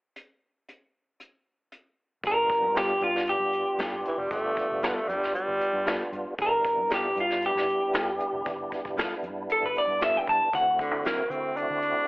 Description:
straight-eighth soul blues; 116 BPM; 4/4; straight; G mixolydian; A4 = 440 Hz
vintage brush drum kit; drums; 0.2-11.9 s; hi-hat, kick drum, snare drum; -33 LUFS; equal
tonewheel organ; accompaniment; 2.2-12.1 s; G3 to F#4; -34 LUFS; right 1 dB; slow rotary speaker, overdrive, chorus vibrato
vintage muted fingered electric bass; bass; 2.2-11.9 s; F1 to D3; -43 LUFS; equal
electric guitar through a small old amp; melody; 2.3-10.8 s; F4 to A5; -25 LUFS; equal
mellow electric guitar; stabs; 2.8-11.2 s; D3 to A4; -35 LUFS; left 1 dB
growling tenor saxophone; second line; 4.1-6.2, 10.8-12.1 s; D3 to D4; -27 LUFS; equal
moderate plate reverb, RT60 1.4 s; telephone sound; -24 LUFS; side -25 dB against mid
0.2-2.2 A section; 2.2-12.1 B section
0.2 N.C.; 2.2 G9; 10.5 D9

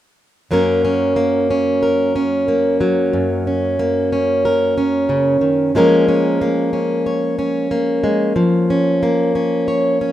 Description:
folk; 92 BPM; 4/4; straight; F# major; A4 = 440 Hz
fingerpicked plugged-in steel-string acoustic guitar; accompaniment; 0.5-10.1 s; F#2 to C#5; -14 LUFS; equal
light reverb; rough home demo mix; -14 LUFS; side -12 dB against mid
0.5-10.1 A section
0.5 F#; 5.8 C#6/E#

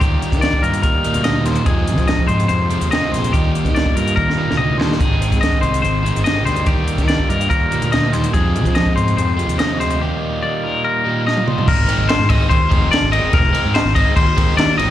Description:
math rock and midwest emo; 144 BPM; 4/4; straight; A4 = 440 Hz
twelve-string electric guitar; accompaniment; 0.0-13.3 s; Eb2 to G4; -24 LUFS; right 4 dB; slapback echo
twangy electric guitar; arpeggios; 0.0-14.9 s; G4 to Eb5; -20 LUFS; left 4 dB; slapback echo
crunchy overdriven guitar; riff; 0.0-14.9 s; Eb2 to Eb4; -23 LUFS; equal; slapback echo
fuzz fingered electric bass; bass; 0.0-14.9 s; F1 to F3; -19 LUFS; equal; overdrive
compact cocktail drum kit; drums; 0.0-14.9 s; crash cymbal, hi-hat, kick drum, ride cymbal, snare drum, toms; -18 LUFS; equal
little or no reverb; live gig heard through the venue's PA, recital hall reverb; -14 LUFS; side -12 dB against mid
0.0-11.7 A section; 11.7-14.9 B section
drum fill 4.2-5.0, 11.3-11.7; break 10.0-11.7
0.0 Ebmaj9; 1.7 Fm7; 3.3 Ebmaj9; 5.0 Abmaj7; 6.7 Ebmaj9; 8.3 Fm7; 10.0 Ebmaj9; 11.7 Ab

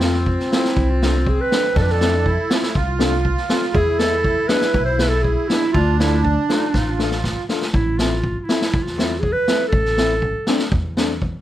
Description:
klezmer; 120 BPM; 4/4; straight; A4 = 440 Hz
mellow clarinet; melody; 0.0-10.7 s; D4 to C5; -21 LUFS; right 1 dB
accordion; second line; 0.0-7.4 s; C4 to F4; -24 LUFS; right 3 dB; light tremolo tuning
warm upright piano; accompaniment; 0.0-11.1 s; G#3 to F4; -23 LUFS; left 3 dB
upright bass; bass; 0.0-11.3 s; A1 to F2; -21 LUFS; equal
street-band drum kit; drums; 0.0-11.3 s; kick drum, snare drum; -22 LUFS; equal
light reverb; -16 LUFS; side -13 dB against mid
0.0-7.7 A section; 7.7-11.4 A section
drum fill 6.7-7.7
0.0 F; 3.7 E; 5.7 Dm; 7.7 Am

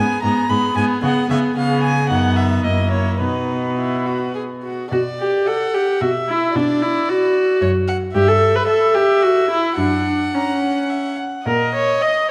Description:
quick classical-period movement for string quartet; 104-115 BPM; 3/4; rubato; B major, B minor from 4.9 s; A4 = 444 Hz
rich violin; melody; 0.0-12.3 s; B4 to B5; -27 LUFS; equal
warm violin; second line; 0.0-12.3 s; D#4 to F#5; -27 LUFS; equal
warm viola; accompaniment; 0.0-12.3 s; A#3 to D#5; -20 LUFS; equal
warm cello; bass; 0.0-11.9 s; F#2 to C#3; -24 LUFS; equal
wet scoring stage reverb, RT60 2.0 s; -18 LUFS; mono
0.0-4.9 A section; 4.9-12.3 B section
0.0 G#m; 1.0 C#7(no3); 2.1 B/F#; 2.6 F#7; 3.2 B; 4.9 Bm; 6.0 Bsus4; 6.6 Bm; 7.6 F#5; 8.1 Em/G; 9.8 F#5; 11.5 A#madd11

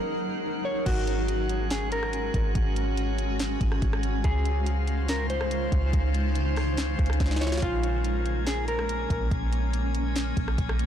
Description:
hip hop, atmospheric cloud-rap; 142 BPM; 4/4; half-time; A4 = 439 Hz
granular cloud pad; sustained chords; 0.0-10.9 s; Db3 to C5; -32 LUFS; equal; built-in reverb, sidechain pumping
drifting glass-harmonics texture; texture; 0.0-10.9 s; Db4 to Ab5; -36 LUFS; left 2 dB; chorus, built-in reverb
mellow electric guitar; melody; 0.6-9.3 s; F4 to Db5; -33 LUFS; equal; low-pass filter, ping-pong delay
soft 808-style bass; bass; 0.9-10.9 s; Ab1 to Db2; -27 LUFS; equal
smooth R&B drum kit; drums; 0.9-10.9 s; crash cymbal, hi-hat, kick drum, rim click, snare drum; -29 LUFS; equal
little or no reverb; blown-out, overdriven recording, overdrive; -24 LUFS; side -9 dB against mid
0.9-10.9 A section
break 0.0-0.9; drum fill 7.2-7.6
0.0 Gb6; 0.9 Ab7sus4; 4.2 Dbmaj7; 7.6 Bbm7

